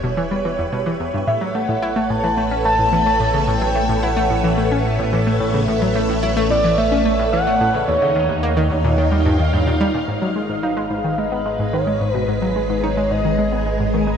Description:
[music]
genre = ambient, sequencer-driven space music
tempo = 109 BPM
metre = 4/4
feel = straight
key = G# dorian from 10.1 s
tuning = A4 = 444 Hz
[part]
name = string machine, full ensemble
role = sustained chords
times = 0.0-14.2 s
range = G#3 to A#5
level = -22 LUFS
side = equal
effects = phaser, ensemble chorus
[part]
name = analog pluck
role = riff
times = 0.0-14.1 s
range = D#2 to E4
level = -22 LUFS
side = equal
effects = chorus, tape echo
[part]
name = fat analog bass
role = bass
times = 0.0-14.2 s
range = E1 to G#1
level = -23 LUFS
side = equal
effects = none
[part]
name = pulsing gated texture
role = texture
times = 0.0-10.1 s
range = C#5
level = -30 LUFS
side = right 3 dB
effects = chorus, built-in reverb
[part]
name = pulse-width lead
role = melody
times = 1.3-14.2 s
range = B4 to A5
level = -21 LUFS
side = equal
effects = chorus, tape echo
[sound]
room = wet huge ambient reverb, RT60 7.8 s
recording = cassette tape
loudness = -16 LUFS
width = side -7 dB against mid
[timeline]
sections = 0.0-10.1 A section; 10.1-14.2 B section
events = fade-in on string machine 0.0-10.1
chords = 0.0 Em; 1.3 A6; 7.9 D#7; 10.1 G#madd9

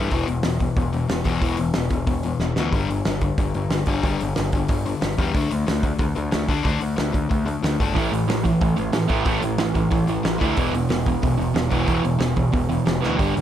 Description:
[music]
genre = punk rock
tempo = 183 BPM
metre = 4/4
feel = straight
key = unclear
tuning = A4 = 440 Hz
[part]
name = sludgy distorted guitar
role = riff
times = 0.0-13.4 s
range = E2 to D4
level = -24 LUFS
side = left 5 dB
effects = overdrive
[part]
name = growling picked electric bass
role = bass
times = 0.0-13.4 s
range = E1 to E2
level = -26 LUFS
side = equal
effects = overdrive
[part]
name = loose indie drum kit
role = drums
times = 0.1-13.4 s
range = hi-hat, kick drum, snare drum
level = -24 LUFS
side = right 1 dB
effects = none
[part]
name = sludgy distorted guitar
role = riff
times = 7.9-13.4 s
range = E2 to A3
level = -23 LUFS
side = right 9 dB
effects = overdrive
[sound]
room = little or no reverb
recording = none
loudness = -19 LUFS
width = side -10 dB against mid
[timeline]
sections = 0.0-13.4 A section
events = drum fill 2.4-2.7, 13.0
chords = 0.1 E5; 2.7 G5; 5.3 D5; 8.0 A5; 10.6 E5

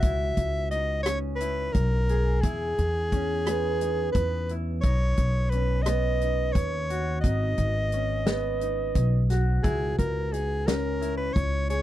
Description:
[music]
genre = progressive instrumental, band music in an uneven meter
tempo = 175 BPM (eighths)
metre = 7/8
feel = straight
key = unclear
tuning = A4 = 441 Hz
[part]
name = clear soprano saxophone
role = melody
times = 0.0-11.8 s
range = G#4 to E5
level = -30 LUFS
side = left 1 dB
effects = none
[part]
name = Celtic harp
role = arpeggios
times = 0.0-11.8 s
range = B3 to G#4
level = -32 LUFS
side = right 2 dB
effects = none
[part]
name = upright bass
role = bass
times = 0.0-11.8 s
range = G#1 to E2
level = -27 LUFS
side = equal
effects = none
[part]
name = warm soul drum kit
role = drums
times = 0.0-11.8 s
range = hi-hat, kick drum, rim click, snare drum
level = -26 LUFS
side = equal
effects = none
[sound]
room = little or no reverb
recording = none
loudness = -24 LUFS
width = side -13 dB against mid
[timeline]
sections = 0.0-11.8 A section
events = none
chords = 0.0 C#m; 2.4 E; 4.8 B; 7.2 G#m; 9.6 C#m

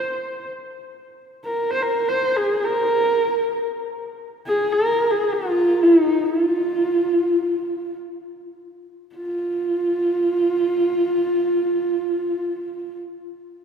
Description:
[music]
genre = mongolian traditional, Mongolian folk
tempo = free time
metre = none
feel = none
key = F yu mode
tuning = A4 = 440 Hz
[part]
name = dark horsehead fiddle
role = solo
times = 0.0-13.0 s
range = Eb4 to C5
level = -19 LUFS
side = right 1 dB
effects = none
[sound]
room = wet church reverb, RT60 3.5 s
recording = recorded in a church or concert hall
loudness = -18 LUFS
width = side -6 dB against mid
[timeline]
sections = 0.0-9.2 A section; 9.2-13.6 B section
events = slowing down 5.1-9.2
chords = none

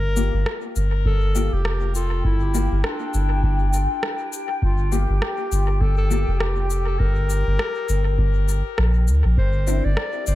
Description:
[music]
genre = ambient dub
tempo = 101 BPM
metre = 4/4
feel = swing 57% on 16ths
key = G dorian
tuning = A4 = 441 Hz
[part]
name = warm clarinet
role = melody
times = 0.0-10.3 s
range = D4 to D5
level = -28 LUFS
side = left 2 dB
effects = ping-pong delay
[part]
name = soft dub sub bass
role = bass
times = 0.0-10.3 s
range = F1 to D2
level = -20 LUFS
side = equal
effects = none
[part]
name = mellow electric guitar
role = stabs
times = 0.2-9.9 s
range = Bb3 to G4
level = -31 LUFS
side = left 3 dB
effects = analog chorus, low-pass filter, dub echo
[part]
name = electronic cabasa and rim click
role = drums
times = 0.2-10.3 s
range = none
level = -29 LUFS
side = equal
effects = dub echo
[part]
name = granular cloud pad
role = sustained chords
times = 2.0-10.3 s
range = G4 to G5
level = -32 LUFS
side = left 3 dB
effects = built-in reverb
[part]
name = electronic kick drum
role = drums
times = 1.1-9.5 s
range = none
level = -24 LUFS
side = equal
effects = none
[sound]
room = light reverb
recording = none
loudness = -19 LUFS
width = side -15 dB against mid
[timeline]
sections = 0.0-10.3 A section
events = none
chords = 0.0 Gm7; 9.4 Cadd9/G

